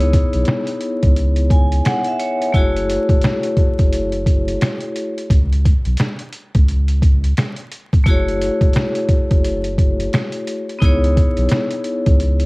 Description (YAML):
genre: hip hop, boom-bap hip-hop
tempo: 87 BPM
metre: 4/4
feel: swing 61% on 16ths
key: F# dorian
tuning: A4 = 440 Hz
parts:
  - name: vibraphone with hard mallets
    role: accompaniment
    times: 0.0-12.5 s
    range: A3 to G#5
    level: -20 LUFS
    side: left 1 dB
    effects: cassette tape, high-pass filter, low-pass filter
  - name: soft dub sub bass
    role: bass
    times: 0.0-12.5 s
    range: E1 to C#2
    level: -18 LUFS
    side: equal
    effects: tube saturation
  - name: trip hop sampler-style drum kit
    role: drums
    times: 0.0-12.5 s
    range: hi-hat, kick drum, snare drum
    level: -16 LUFS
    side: equal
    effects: cassette tape
room: digital ambience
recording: home recording on cassette, vinyl crackle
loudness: -14 LUFS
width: side -24 dB against mid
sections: 0.0-12.5 A section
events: none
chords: 0.0 C#m7; 2.5 F#m7; 5.3 N.C.; 8.1 F#m7; 10.8 C#m7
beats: 0.47 1.16 1.85 | 2.54 3.23 3.92 4.61 | 5.30 5.99 6.68 7.37 | 8.06 8.75 9.44 10.13 | 10.82 11.51 12.20